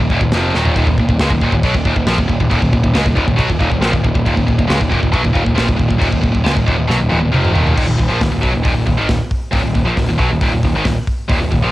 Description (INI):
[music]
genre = heavy metal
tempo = 137 BPM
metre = 4/4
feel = straight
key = Eb minor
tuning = A4 = 440 Hz
[part]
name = high-gain distorted guitar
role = riff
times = 0.0-11.7 s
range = Eb2 to Ab3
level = -16 LUFS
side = equal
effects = distortion
[part]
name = growling picked electric bass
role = bass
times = 0.0-11.7 s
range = Eb1 to Db2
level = -18 LUFS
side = equal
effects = overdrive
[part]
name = modern studio drum kit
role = drums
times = 0.1-11.6 s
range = crash cymbal, hi-hat, kick drum, snare drum, toms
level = -17 LUFS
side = equal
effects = cassette tape
[sound]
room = studio ambience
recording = home recording on cassette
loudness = -12 LUFS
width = side -16 dB against mid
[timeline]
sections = 0.0-7.8 A section; 7.8-11.7 B section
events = drum fill 0.5, 6.9-7.8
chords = 0.0 Eb5